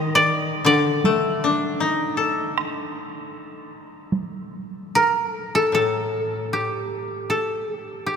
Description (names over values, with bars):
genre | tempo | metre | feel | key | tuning
japanese traditional, Japanese chamber music | 70-82 BPM | 4/4 | rubato | D miyako bushi | A4 = 440 Hz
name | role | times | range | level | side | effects
koto | melody | 0.0-8.2 s | G4 to Eb5 | -21 LUFS | equal | none
koto | accompaniment | 0.0-8.0 s | A2 to A4 | -23 LUFS | left 3 dB | none
solo taiko drums | percussion | 1.0-4.3 s | none | -30 LUFS | right 3 dB | none
room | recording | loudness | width
wet cathedral reverb, RT60 5.8 s | minimal, uncompressed stereo recording | -20 LUFS | side -6 dB against mid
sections
0.0-5.7 A section; 5.7-8.2 B section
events
none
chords
none